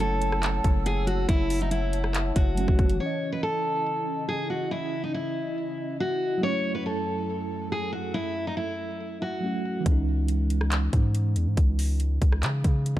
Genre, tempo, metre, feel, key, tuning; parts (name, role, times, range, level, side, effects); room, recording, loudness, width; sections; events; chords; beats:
hip hop, trap; 140 BPM; 4/4; half-time; C# minor; A4 = 440 Hz
picked steel-string acoustic guitar; melody; 0.0-9.8 s; D#4 to C#5; -29 LUFS; equal; low-pass filter, ping-pong delay
mellow tine electric piano; accompaniment; 0.0-13.0 s; E3 to D#5; -33 LUFS; right 3 dB; medium stereo tremolo, low-pass filter
airy breathy pad; sustained chords; 0.0-9.8 s; F#2 to E6; -35 LUFS; equal; chorus
long sustained 808-style bass; bass; 0.0-3.0, 9.9-13.0 s; F#1 to C#3; -25 LUFS; equal
trap drum kit; drums; 0.0-3.0, 9.9-13.0 s; handclaps, hi-hat, kick drum, rim click; -25 LUFS; equal
little or no reverb; dark, warm production; -24 LUFS; side -14 dB against mid
0.0-3.0 A section; 3.0-9.9 B section; 9.9-13.0 C section
0.0 F#m7; 3.0 C#madd9; 6.4 F#m7; 9.9 C#madd9
0.00 0.43 0.86 | 1.29 1.72 2.15 2.57 | 3.00 3.43 3.86 4.29 | 4.72 5.14 5.57 6.00 | 6.43 6.86 7.29 7.72 | 8.14 8.57 9.00 9.43 | 9.86 10.29 10.72 11.14 | 11.57 12.00 12.43 12.86